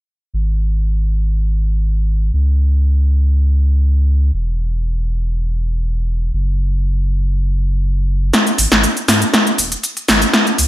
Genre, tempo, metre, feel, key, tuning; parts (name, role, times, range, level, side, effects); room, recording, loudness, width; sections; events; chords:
progressive house; 120 BPM; 4/4; straight; A4 = 440 Hz
saturated sub bass; bass; 0.3-10.7 s; D#1 to G#2; -15 LUFS; equal
big-room dance drum kit; drums; 8.3-10.7 s; hi-hat, shaker, snare drum; -12 LUFS; equal
little or no reverb; -14 LUFS; side -15 dB against mid
0.3-8.3 A section; 8.3-10.7 B section
build-up 8.3-10.7; drum fill 8.3-10.7